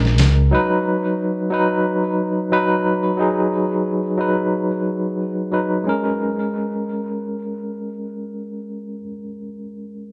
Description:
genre	trip hop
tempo	90 BPM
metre	4/4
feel	swing 57% on 16ths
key	Bb phrygian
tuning	A4 = 440 Hz
part	barky tine electric piano	accompaniment	0.0-10.1 s	F#3 to B4	-22 LUFS	equal	overdrive, tremolo, vintage 12-bit sampler grit, tape echo
part	upright bass	bass	0.0-0.5 s	Bb1 to Db2	-17 LUFS	equal	none
room	little or no reverb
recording	none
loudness	-20 LUFS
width	mono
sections	0.0-5.9 A section; 5.9-8.5 B section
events	none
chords	0.0 Bbm7; 0.5 B; 5.9 Bbm7

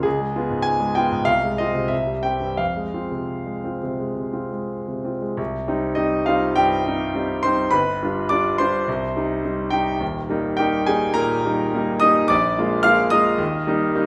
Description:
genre	classical, romantic character piece for solo piano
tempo	84-112 BPM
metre	4/4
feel	rubato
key	C minor from 5.4 s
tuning	A4 = 439 Hz
part	clear concert grand piano	solo	0.0-14.1 s	Eb1 to F6	-21 LUFS	equal	none
room	wet recital hall reverb, RT60 1.4 s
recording	none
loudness	-21 LUFS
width	mono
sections	0.0-5.4 A section; 5.4-14.1 B section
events	none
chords	0.1 Db7; 1.3 Fm/C; 1.9 C; 2.6 Fm; 5.4 Cm; 7.7 G7; 8.9 Cm; 10.0 Eb; 12.3 Bb7; 13.4 Eb

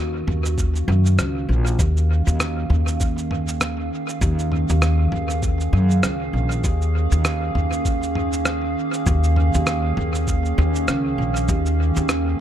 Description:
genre	ambient dub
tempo	99 BPM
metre	4/4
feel	swing 58% on 16ths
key	Eb minor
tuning	A4 = 441 Hz
part	warbly tape-like pad	sustained chords	0.0-12.4 s	Eb3 to F5	-25 LUFS	right 2 dB	chorus, built-in reverb
part	upright bass	bass	0.0-12.4 s	Bb1 to Gb2	-20 LUFS	equal	none
part	lo-fi sampler-style drum kit	drums	0.3-12.2 s	rim click, shaker, toms	-27 LUFS	equal	dub echo
part	electronic kick drum	drums	0.6-11.6 s	none	-23 LUFS	equal	none
room	little or no reverb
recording	echo-heavy mix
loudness	-18 LUFS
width	side -10 dB against mid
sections	0.0-12.4 A section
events	none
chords	0.0 Ebm9; 6.6 Bbm7

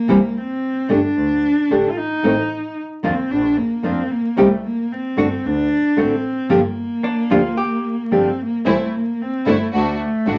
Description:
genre	tango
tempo	112 BPM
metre	4/4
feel	rubato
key	G minor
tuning	A4 = 441 Hz
part	dark cello	second line	0.0-10.4 s	A3 to F4	-22 LUFS	equal	none
part	nylon-string guitar	accompaniment	0.1-10.4 s	C3 to G4	-19 LUFS	equal	none
part	clear double bass	bass	0.1-10.4 s	F1 to Eb2	-30 LUFS	equal	none
part	hollow-body jazz guitar	second line	7.0-8.0 s	D4 to G4	-26 LUFS	equal	none
part	warm symphonic string section	stabs	8.7-10.4 s	A3 to F#4	-24 LUFS	equal	none
room	moderate small room reverb, RT60 0.6 s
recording	vinyl crackle, nothing above 7.7 kHz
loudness	-19 LUFS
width	mono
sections	0.0-10.4 A section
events	cello solo 0.0-10.4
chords	0.1 C; 1.2 Dsus4; 2.2 Adim; 3.3 Bb; 4.4 C5; 5.4 D; 6.5 Gm7; 8.7 C6; 9.7 D

